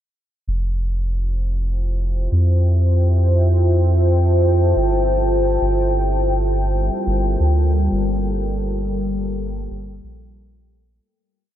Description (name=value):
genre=ambient dub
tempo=91 BPM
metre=4/4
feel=swing 59% on 16ths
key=G dorian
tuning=A4 = 440 Hz
part: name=deep dark ambient pad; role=sustained chords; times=2.2-11.0 s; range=G3 to A5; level=-21 LUFS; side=equal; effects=chorus, built-in reverb
part: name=soft dub sub bass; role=bass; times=0.5-11.0 s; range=F1 to F2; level=-18 LUFS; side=equal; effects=none
room=light reverb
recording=none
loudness=-16 LUFS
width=side -11 dB against mid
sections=0.5-11.0 groove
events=fade-out 7.5-11.0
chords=0.5 Fmaj9; 5.8 Gm9